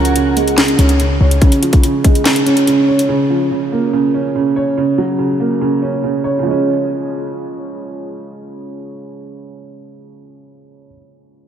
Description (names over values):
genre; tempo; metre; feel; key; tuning
hip hop, trap; 143 BPM; 4/4; half-time; Db major; A4 = 440 Hz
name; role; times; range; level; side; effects
guzheng; melody; 0.0-2.0 s; Gb4 to Bb4; -25 LUFS; right 1 dB; tape echo
dark baby grand piano; accompaniment; 0.0-11.5 s; Db3 to Db5; -15 LUFS; right 2 dB; low-pass filter
short 808-style bass; bass; 0.0-1.4 s; Db2; -14 LUFS; left 1 dB; none
trap drum kit; drums; 0.1-3.1 s; handclaps, hi-hat, kick drum, snare drum; -15 LUFS; left 1 dB; none
room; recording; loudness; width
wet huge ambient reverb, RT60 4.1 s; dreamy mix soaked in reverb; -12 LUFS; side -9 dB against mid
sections
0.0-6.5 A section; 6.5-9.8 B section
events
filter sweep on grand piano 0.0-6.5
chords
0.0 Db; 3.1 Bbm; 4.8 Gb; 6.5 Db